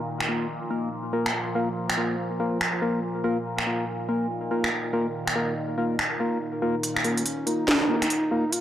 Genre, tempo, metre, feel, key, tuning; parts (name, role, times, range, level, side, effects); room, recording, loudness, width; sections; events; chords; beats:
deep dubstep; 142 BPM; 4/4; swing 62% on 16ths, half-time; A4 = 440 Hz
overtone-sweeping drone; sustained chords; 0.0-8.6 s; Bb2 to F3; -32 LUFS; equal; chorus, built-in reverb
garage drum kit; drums; 0.2-8.6 s; finger snaps, hi-hat, snare drum; -26 LUFS; equal
percussive organ stab; stabs; 0.3-8.4 s; Bb3 to Bb4; -27 LUFS; left 1 dB; chorus, dub echo
dark duduk; melody; 7.0-8.6 s; Db4 to F4; -27 LUFS; equal; low-pass filter
moderate spring reverb, RT60 2.2 s; dry, gritty hardware recording; -24 LUFS; side -11 dB against mid
0.0-6.8 A section; 6.8-8.6 B section
build-up 6.8-8.6
0.0 Bb5
| 0.07 0.50 0.92 1.34 | 1.76 2.19 2.61 3.03 | 3.45 3.88 4.30 4.72 | 5.14 5.57 5.99 6.41 | 6.83 7.26 7.68 8.10 | 8.52